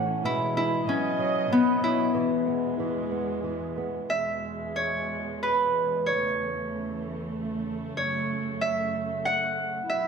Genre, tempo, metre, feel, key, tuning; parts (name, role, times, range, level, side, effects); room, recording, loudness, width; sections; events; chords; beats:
children's music, lullaby; 94 BPM; 3/4; rubato; E major; A4 = 440 Hz
Celtic harp; melody; 0.0-10.1 s; B3 to F#5; -26 LUFS; left 1 dB
flamenco guitar; accompaniment; 0.0-4.1 s; A2 to F#5; -31 LUFS; right 3 dB
dark chamber string section; sustained chords; 0.0-10.1 s; E2 to D#5; -33 LUFS; right 2 dB
wet scoring stage reverb, RT60 1.7 s; recorded in a church or concert hall; -25 LUFS; side -6 dB against mid
0.0-4.1 A section; 4.1-10.1 A section
nylon-string guitar fill 0.0
0.2 E/B; 0.9 B; 2.1 E; 6.1 A/E; 8.0 F#m
| 0.25 0.88 1.50 | 2.14 2.79 3.44 | 4.10 4.76 5.42 | 6.07 6.70 7.34 | 7.97 8.60 9.23 | 9.88